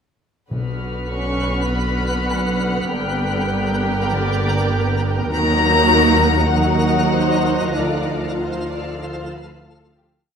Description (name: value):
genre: cinematic, suspense film score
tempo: 99 BPM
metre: 4/4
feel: straight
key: unclear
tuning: A4 = 441 Hz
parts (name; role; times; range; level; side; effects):
- muted chamber violin section; second line; 0.5-10.3 s; F#4 to D5; -25 LUFS; equal; none
- muted chamber viola section; accompaniment; 0.5-10.0 s; D3 to F4; -25 LUFS; left 2 dB; none
- twinkling granular texture; sustained chords; 1.1-10.3 s; B3 to G5; -26 LUFS; equal; built-in reverb
- muted chamber double bass section; bass; 0.5-10.0 s; G1 to D#2; -22 LUFS; right 2 dB; none
- timpani; percussion; 0.5-1.4 s; B2; -29 LUFS; left 3 dB; none
- muted studio violin section; texture; 0.5-5.0 s; E#6 to B6; -31 LUFS; left 4 dB; none
- muted chamber violin section; melody; 1.1-9.9 s; D5 to C#6; -22 LUFS; left 6 dB; none
- muted chamber cello section; bass; 1.1-9.9 s; D3 to C#4; -25 LUFS; right 4 dB; none
room: light reverb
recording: none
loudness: -16 LUFS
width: side -7 dB against mid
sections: 0.5-10.3 A section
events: fade-out 7.8-10.3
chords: 0.5 Bm; 2.9 Gm; 5.3 D#m; 7.8 Dm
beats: | 0.51 1.12 1.72 2.33 | 2.94 3.54 4.14 4.74 | 5.33 5.92 6.52 7.14 | 7.76 8.39 9.02 9.65